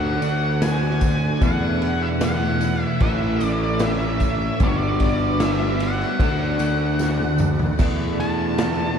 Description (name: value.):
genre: psychedelic rock.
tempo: 75 BPM.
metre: 4/4.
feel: straight.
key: unclear.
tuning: A4 = 445 Hz.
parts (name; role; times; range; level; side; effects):
octave-fuzz lead guitar; melody; 0.0-9.0 s; C#5 to A5; -26 LUFS; equal; distortion, tape echo.
rich chamber string section; sustained chords; 0.0-9.0 s; G3 to D5; -32 LUFS; right 5 dB; none.
twelve-string electric guitar; riff; 0.0-9.0 s; E2 to F#4; -24 LUFS; equal; tremolo, double-tracked left and right.
fuzz picked electric bass; bass; 0.0-9.0 s; G1 to E2; -24 LUFS; left 1 dB; overdrive.
raw garage drum kit; drums; 0.2-8.8 s; crash cymbal, kick drum, ride cymbal, snare drum, splash cymbal, toms; -24 LUFS; equal; none.
tambourine; percussion; 0.2-8.8 s; none; -46 LUFS; left 12 dB; none.
room: moderate lush hall reverb, RT60 3.0 s.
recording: dreamy mix soaked in reverb.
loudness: -18 LUFS.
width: side -7 dB against mid.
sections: 0.0-9.0 A section.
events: drum fill 7.0-7.8.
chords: 0.0 D; 1.4 E7sus4; 3.0 A; 4.6 Gmaj7; 6.2 D; 7.8 E7sus4.